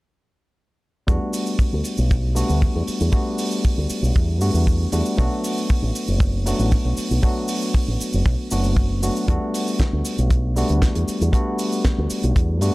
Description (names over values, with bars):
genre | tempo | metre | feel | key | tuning
nu-disco, nu disco | 117 BPM | 4/4 | straight | E minor | A4 = 441 Hz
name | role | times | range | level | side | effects
mellow tine electric piano | accompaniment | 1.1-12.7 s | F#3 to F#4 | -24 LUFS | left 1 dB | overdrive, sidechain pumping, analog delay
fingered electric bass with an envelope filter | bass | 1.1-12.7 s | F#1 to G2 | -20 LUFS | equal | transformer saturation, sidechain pumping
kick drum | drums | 1.1-12.5 s | none | -19 LUFS | equal | none
cabasa | percussion | 1.1-12.7 s | none | -35 LUFS | right 1 dB | none
damped 70s drum kit | drums | 1.3-12.7 s | hi-hat, snare drum | -32 LUFS | right 3 dB | none
room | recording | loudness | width
small room ambience | dry, gritty hardware recording, transformer saturation | -18 LUFS | side -21 dB against mid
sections
1.1-12.7 A section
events
none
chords
1.1 Em11; 5.2 Bm7; 9.3 Em11